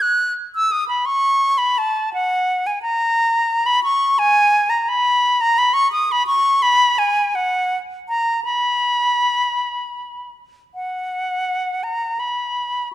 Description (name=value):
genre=classical, baroque-style fantasia for unaccompanied flute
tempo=51-59 BPM (dotted quarters)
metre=6/8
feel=rubato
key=B major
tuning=A4 = 436 Hz
part: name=silver concert flute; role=solo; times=0.0-12.9 s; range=F#5 to F#6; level=-16 LUFS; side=equal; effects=none
room=moderate recital hall reverb, RT60 1.5 s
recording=dark, warm production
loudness=-16 LUFS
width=side -13 dB against mid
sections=0.0-10.7 A section; 10.7-12.9 B section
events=none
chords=none